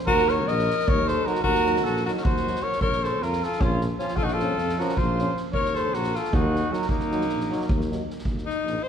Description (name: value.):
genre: balkan folk, Balkan brass band.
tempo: 308 BPM (eighths).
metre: 7/8.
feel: straight.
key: Eb dorian sharp4.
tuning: A4 = 436 Hz.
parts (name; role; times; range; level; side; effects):
warm flugelhorn; melody; 0.1-7.9 s; Eb4 to Eb5; -26 LUFS; right 1 dB; none.
breathy alto saxophone; second line; 0.1-8.9 s; Bb3 to C5; -28 LUFS; left 5 dB; none.
dark tuba; bass; 0.1-8.8 s; Bb1 to F2; -28 LUFS; equal; none.
soft-mallet drum kit; percussion; 0.1-8.7 s; kick drum, snare drum; -29 LUFS; equal; none.
bright trombone; accompaniment; 1.2-8.0 s; F3 to Gb3; -35 LUFS; right 4 dB; none.
warm euphonium; accompaniment; 1.3-8.0 s; Db4 to Eb4; -36 LUFS; left 3 dB; none.
room: moderate concert hall reverb, RT60 2.1 s.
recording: minimal, uncompressed stereo recording.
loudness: -22 LUFS.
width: side -8 dB against mid.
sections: 0.0-8.2 A section.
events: none.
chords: 0.1 Ebm; 2.8 Bbm; 5.5 Ebm; 8.2 Eb5.